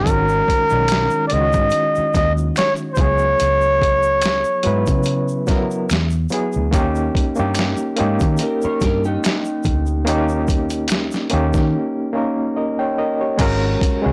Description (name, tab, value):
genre	R&B, neo-soul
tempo	72 BPM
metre	4/4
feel	swing 54% on 16ths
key	G# minor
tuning	A4 = 436 Hz
part	warm flugelhorn	melody	0.0-5.5 s	A#4 to D#5	-20 LUFS	equal	none
part	overdriven reed electric piano	accompaniment	0.0-14.1 s	D#3 to G5	-24 LUFS	equal	fast tremolo
part	vintage muted fingered electric bass	bass	0.0-14.1 s	G#1 to D#3	-23 LUFS	equal	transformer saturation
part	boom bap sampler-style drum kit	drums	0.1-14.0 s	crash cymbal, hi-hat, kick drum, snare drum	-23 LUFS	equal	overdrive
part	tube shaker and finger snaps	percussion	0.1-11.7 s	none	-37 LUFS	equal	none
part	electric guitar through a small old amp	second line	8.4-10.3 s	D#4 to C#5	-25 LUFS	equal	analog chorus
room	light reverb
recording	blown-out, overdriven recording, overdrive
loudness	-18 LUFS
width	mono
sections	0.1-13.4 A section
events	silent gap 11.7-13.4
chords	0.1 G#9sus4; 3.0 C#7sus4; 5.9 E9; 6.7 D#7; 13.4 G#sus2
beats	| 0.06 0.89 1.73 2.56 | 3.39 4.23 5.06 5.89 | 6.73 7.56 8.39 9.23 | 10.06 10.89 11.73 12.56 | 13.39